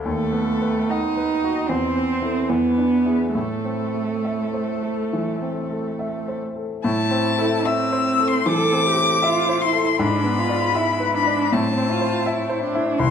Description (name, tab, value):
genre	classical, slow romantic movement for piano trio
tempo	66-83 BPM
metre	4/4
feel	rubato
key	A minor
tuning	A4 = 442 Hz
part	rich violin	melody	0.0-13.1 s	A4 to E6	-24 LUFS	left 5 dB	none
part	clear grand piano	accompaniment	0.0-13.1 s	C2 to F#5	-23 LUFS	left 2 dB	none
part	rich cello	second line	0.1-13.1 s	A3 to A4	-23 LUFS	right 5 dB	none
room	wet recital hall reverb, RT60 1.5 s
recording	dark, warm production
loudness	-19 LUFS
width	side -7 dB against mid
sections	0.0-6.9 A section; 6.9-13.1 A section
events	none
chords	0.1 B7/D#; 1.7 Am/E; 2.5 E7; 3.3 Am; 10.0 E7/G#; 11.5 Am